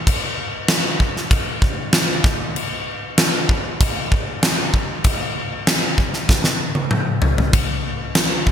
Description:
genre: rock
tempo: 97 BPM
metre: 4/4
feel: straight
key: none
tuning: none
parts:
  - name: huge arena drum kit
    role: drums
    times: 0.1-8.5 s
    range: crash cymbal, kick drum, snare drum, toms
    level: -17 LUFS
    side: equal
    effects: gated reverb
room: light reverb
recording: bright 1980s-style digital production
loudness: -17 LUFS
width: side -9 dB against mid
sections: 0.0-7.5 A section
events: drum fill 6.3-7.5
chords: none

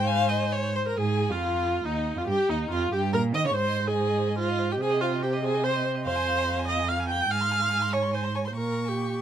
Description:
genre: quick classical-period movement for string quartet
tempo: 143 BPM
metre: 3/4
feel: rubato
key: Ab major, F minor from 6.1 s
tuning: A4 = 440 Hz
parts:
  - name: rich violin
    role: melody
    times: 0.0-9.2 s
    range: Eb5 to G6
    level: -35 LUFS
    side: left 6 dB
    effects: none
  - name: rich violin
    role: second line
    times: 0.0-9.2 s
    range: Eb4 to Db6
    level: -32 LUFS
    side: left 6 dB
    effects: none
  - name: rich viola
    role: accompaniment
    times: 0.0-9.2 s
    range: Eb4 to G5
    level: -27 LUFS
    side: right 3 dB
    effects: none
  - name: rich cello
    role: bass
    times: 0.0-9.2 s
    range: Eb2 to Eb3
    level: -29 LUFS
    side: right 3 dB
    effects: none
room: light reverb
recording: close, detailed microphones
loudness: -24 LUFS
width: side -9 dB against mid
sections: 1.0-9.2 A section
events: none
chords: 0.0 Ab; 1.0 Ab5; 2.3 Eb7; 3.6 Ab; 4.8 Fm9/C; 6.1 Fm; 7.3 Fm/Ab; 8.6 Bbm

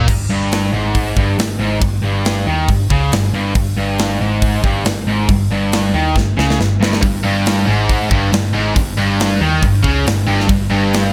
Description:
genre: hard rock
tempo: 138 BPM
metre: 4/4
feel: straight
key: unclear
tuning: A4 = 443 Hz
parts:
  - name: distorted electric guitar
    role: riff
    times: 0.0-11.1 s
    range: G2 to Eb3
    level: -22 LUFS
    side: equal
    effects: distortion
  - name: distorted electric guitar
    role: riff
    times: 0.0-11.1 s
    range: G2 to Eb3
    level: -23 LUFS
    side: equal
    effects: overdrive
  - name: heavy high-gain guitar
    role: riff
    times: 0.0-0.1, 7.0-11.1 s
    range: G2 to Eb3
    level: -23 LUFS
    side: equal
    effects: distortion
  - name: hollow-body short-scale picked electric bass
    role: bass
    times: 0.0-11.1 s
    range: G1 to Eb2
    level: -21 LUFS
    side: equal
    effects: none
  - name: tight metal drum kit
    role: drums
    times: 0.1-11.0 s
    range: crash cymbal, hi-hat, kick drum, snare drum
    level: -21 LUFS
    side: equal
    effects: none
room: light reverb, small room ambience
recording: none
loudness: -15 LUFS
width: mono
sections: 0.1-11.1 A section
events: drum fill 6.2-7.0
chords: none

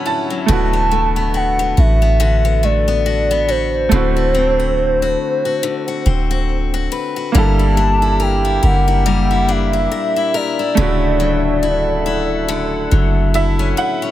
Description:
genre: R&B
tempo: 70 BPM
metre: 4/4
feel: swing 58% on 16ths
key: D major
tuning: A4 = 441 Hz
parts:
  - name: clear grand piano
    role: accompaniment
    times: 0.0-14.1 s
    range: B2 to A5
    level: -23 LUFS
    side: right 5 dB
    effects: none
  - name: chorused pulse-width pad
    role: sustained chords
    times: 0.0-0.5, 7.3-14.1 s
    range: Bb3 to F#5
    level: -24 LUFS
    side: equal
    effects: none
  - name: picked steel-string acoustic guitar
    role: arpeggios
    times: 0.0-14.1 s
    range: D3 to B4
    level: -21 LUFS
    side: left 6 dB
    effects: none
  - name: gliding portamento lead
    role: melody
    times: 0.5-13.8 s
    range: C5 to A5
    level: -19 LUFS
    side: equal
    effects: chorus, ping-pong delay
  - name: warm 808-style bass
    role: bass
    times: 0.5-13.7 s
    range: D1 to A1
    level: -17 LUFS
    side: equal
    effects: none
room: studio ambience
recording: none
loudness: -14 LUFS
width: side -13 dB against mid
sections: 0.5-14.1 A section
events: break 0.0-0.5; grand piano fill 0.0-0.5, 12.9-14.1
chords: 0.5 D6; 3.9 D13; 7.3 Gm6; 10.8 Dmaj9

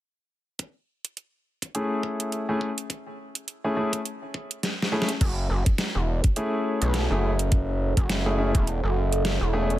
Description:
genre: glitch hop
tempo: 104 BPM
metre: 4/4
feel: swing 57% on 16ths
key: F# minor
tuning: A4 = 439 Hz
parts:
  - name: dubstep drum kit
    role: drums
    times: 0.6-9.8 s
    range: crash cymbal, hi-hat, snare drum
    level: -29 LUFS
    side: right 1 dB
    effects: none
  - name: electronic kick drum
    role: drums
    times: 0.6-8.6 s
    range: none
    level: -23 LUFS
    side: equal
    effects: high-pass filter on kick, high-pass filter on room
  - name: warm baby grand piano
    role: stabs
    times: 1.7-9.7 s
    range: A3 to G#4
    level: -28 LUFS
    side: left 1 dB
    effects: sidechain pumping, low-pass filter, digital delay
  - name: gritty driven synth bass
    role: bass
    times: 5.2-9.8 s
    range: E1 to B1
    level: -24 LUFS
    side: equal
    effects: overdrive
  - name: warbly tape-like pad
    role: texture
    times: 5.9-9.8 s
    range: F#4 to C#5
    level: -34 LUFS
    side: right 4 dB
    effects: chorus, built-in reverb, sidechain pumping
room: little or no reverb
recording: none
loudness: -23 LUFS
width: side -14 dB against mid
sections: 0.6-5.2 A section; 5.2-9.8 B section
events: drum fill 4.6-5.2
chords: 0.6 Amaj7; 5.2 F#m7

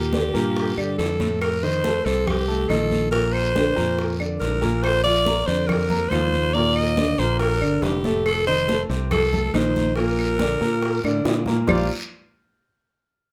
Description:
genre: Afro-Cuban jazz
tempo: 140 BPM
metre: 4/4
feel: straight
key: Bb major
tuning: A4 = 436 Hz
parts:
  - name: growling alto saxophone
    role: melody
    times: 0.0-11.9 s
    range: F4 to Eb5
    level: -25 LUFS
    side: equal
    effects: none
  - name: warm grand piano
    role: accompaniment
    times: 0.0-11.9 s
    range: A2 to Bb5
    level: -28 LUFS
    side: equal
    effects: none
  - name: fingered electric bass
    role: bass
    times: 0.0-11.9 s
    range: F1 to Bb2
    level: -28 LUFS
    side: equal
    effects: none
  - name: bongos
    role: percussion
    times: 0.1-11.8 s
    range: none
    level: -33 LUFS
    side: equal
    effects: none
  - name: congas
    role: percussion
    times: 0.1-11.8 s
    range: none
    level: -30 LUFS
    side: equal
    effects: none
  - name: guiro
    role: percussion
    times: 0.1-11.8 s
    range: none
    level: -40 LUFS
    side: equal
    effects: none
  - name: claves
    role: percussion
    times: 0.8-11.8 s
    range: none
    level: -34 LUFS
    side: equal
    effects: none
room: moderate studio reverb, RT60 0.6 s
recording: band playing live in one room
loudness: -21 LUFS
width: mono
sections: 0.0-11.7 A section; 11.7-13.3 B section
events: drum fill 11.0-11.7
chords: 0.0 Ebmaj7; 1.4 F7; 3.1 Bbadd9; 6.5 Ebmaj7; 8.3 F7; 10.0 Bb; 11.7 Bb69

